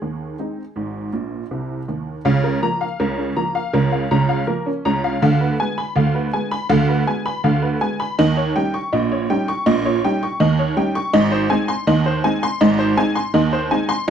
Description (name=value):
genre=ragtime piano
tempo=81 BPM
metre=2/4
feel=straight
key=Ab major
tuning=A4 = 440 Hz
part: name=honky-tonk upright piano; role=solo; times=0.0-14.1 s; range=Ab1 to Db6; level=-17 LUFS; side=right 1 dB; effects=none
room=light reverb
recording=close, detailed microphones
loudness=-17 LUFS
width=side -8 dB against mid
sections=0.0-2.3 A section; 2.3-14.1 B section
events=honky-tonk piano fill 1.1-2.3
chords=0.0 Ab; 2.3 Bbm/Db; 5.2 Ddim7; 8.2 Eb7/Bb; 11.1 Ab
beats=0.02 | 0.77 1.52 | 2.26 3.00 | 3.74 4.49 | 5.23 5.97 | 6.71 7.45 | 8.19 8.93 | 9.67 10.41 | 11.14 11.88 | 12.62 13.36 | 14.09